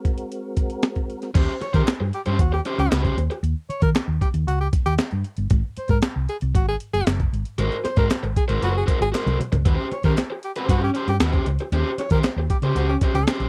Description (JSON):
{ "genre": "funk", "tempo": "116 BPM", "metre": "4/4", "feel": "straight", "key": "Eb mixolydian", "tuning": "A4 = 440 Hz", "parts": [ { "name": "percussive tonewheel organ", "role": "sustained chords", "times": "0.0-1.3 s", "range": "Ab3 to Bb4", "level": "-33 LUFS", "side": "equal", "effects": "fast rotary speaker, chorus vibrato" }, { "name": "breakbeat sampler-style drum kit", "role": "drums", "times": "0.0-13.5 s", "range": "crash cymbal, hi-hat, kick drum, snare drum, toms", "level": "-24 LUFS", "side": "equal", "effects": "none" }, { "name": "overdriven electric guitar", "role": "accompaniment", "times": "1.3-3.3, 7.6-13.5 s", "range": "Db4 to C5", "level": "-28 LUFS", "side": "equal", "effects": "none" }, { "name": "hollow-body short-scale fingered electric bass", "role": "bass", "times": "1.4-13.5 s", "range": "Gb1 to Eb3", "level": "-25 LUFS", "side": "equal", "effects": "none" }, { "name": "breathy tenor saxophone", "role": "second line", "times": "1.6-13.3 s", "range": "Gb4 to Db5", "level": "-28 LUFS", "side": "equal", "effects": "none" }, { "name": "group handclap", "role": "percussion", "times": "1.9-13.4 s", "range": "none", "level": "-39 LUFS", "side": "equal", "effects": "none" } ], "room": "little or no reverb", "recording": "dry, close 1970s-style studio recording", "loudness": "-22 LUFS", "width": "mono", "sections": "0.0-1.4 A section; 1.4-13.5 B section", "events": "drum fill 9.1-9.7", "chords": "0.0 Ab9; 1.4 Eb6; 5.5 Ab9; 9.7 Eb6", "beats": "0.31 0.83 | 1.35 1.87 2.39 2.91 | 3.43 3.95 4.47 4.99 | 5.51 6.03 6.55 7.07 | 7.58 8.10 8.62 9.14 | 9.66 10.18 10.69 11.21 | 11.73 12.24 12.76 13.28" }